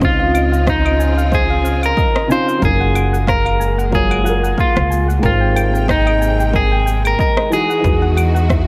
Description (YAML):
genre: sunset chillout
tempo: 92 BPM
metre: 4/4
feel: swing 55% on 16ths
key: Db major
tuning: A4 = 442 Hz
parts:
  - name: clean electric guitar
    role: melody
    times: 0.0-8.7 s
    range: Eb4 to C5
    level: -21 LUFS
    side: equal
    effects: digital delay
  - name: dark baby grand piano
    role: accompaniment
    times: 0.0-8.7 s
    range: Db3 to G5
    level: -24 LUFS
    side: equal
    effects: none
  - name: clear symphonic string section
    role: sustained chords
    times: 0.0-8.7 s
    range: C3 to G5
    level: -28 LUFS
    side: equal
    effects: none
  - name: soft round pluck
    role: arpeggios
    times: 0.0-8.7 s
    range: Bb4 to Ab5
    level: -27 LUFS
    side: equal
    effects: chorus, digital delay
  - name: upright bass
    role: bass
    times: 0.0-8.7 s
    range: Gb1 to E2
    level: -19 LUFS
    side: equal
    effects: none
  - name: electronic cabasa, claves and rim click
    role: drums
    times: 0.0-8.6 s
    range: none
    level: -27 LUFS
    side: equal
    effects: overdrive, small room ambience
  - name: electronic kick drum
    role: drums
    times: 0.0-8.6 s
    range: none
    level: -22 LUFS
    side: equal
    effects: overdrive, small room ambience
room: light reverb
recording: none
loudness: -15 LUFS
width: mono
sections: 0.0-8.7 A section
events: none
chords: 0.0 Dbmaj9; 2.6 Gbmaj9; 5.2 Abmaj9; 7.5 Emaj9